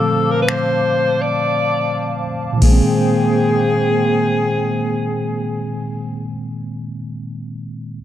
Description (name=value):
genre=contemporary R&B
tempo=free time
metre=none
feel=none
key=Ab major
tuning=A4 = 440 Hz
part: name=breathy alto saxophone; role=melody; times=0.0-6.2 s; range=Ab4 to D5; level=-19 LUFS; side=left 2 dB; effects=none
part: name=mellow tine electric piano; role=accompaniment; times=0.0-8.0 s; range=Bb2 to C4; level=-20 LUFS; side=equal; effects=medium stereo tremolo
part: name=hollow soft pad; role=sustained chords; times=0.0-6.2 s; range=Bb3 to D6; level=-24 LUFS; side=right 1 dB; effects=chorus
part: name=booming analog drum machine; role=drums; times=0.5-2.8 s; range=crash cymbal, finger snaps, kick drum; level=-15 LUFS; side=equal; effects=none
room=digital ambience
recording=dry, gritty hardware recording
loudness=-15 LUFS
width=side -11 dB against mid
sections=0.0-2.6 A section; 2.6-5.5 B section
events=break 1.2-2.6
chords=0.0 Bbmaj9; 2.6 Abmaj9